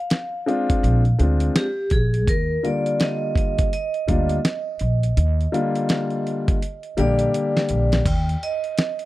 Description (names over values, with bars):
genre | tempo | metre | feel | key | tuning
hip hop, jazz-hop | 83 BPM | 4/4 | swing 62% on 16ths | Eb major | A4 = 443 Hz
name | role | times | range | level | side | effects
vibraphone with hard mallets | melody | 0.0-9.1 s | G4 to G5 | -26 LUFS | right 2 dB | none
dusty soul sampler-style drum kit | drums | 0.1-9.1 s | crash cymbal, hi-hat, kick drum, snare drum | -22 LUFS | equal | none
dark baby grand piano | accompaniment | 0.5-8.0 s | D3 to G4 | -23 LUFS | left 2 dB | none
upright bass | bass | 0.8-8.3 s | Bb1 to Eb2 | -19 LUFS | equal | none
room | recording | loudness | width
small room ambience | dry, close 1970s-style studio recording | -19 LUFS | side -17 dB against mid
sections
0.0-8.1 A section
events
drum fill 6.6-8.1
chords
0.0 Fm; 0.8 Bb7; 2.3 Ebmaj9; 8.1 Eb5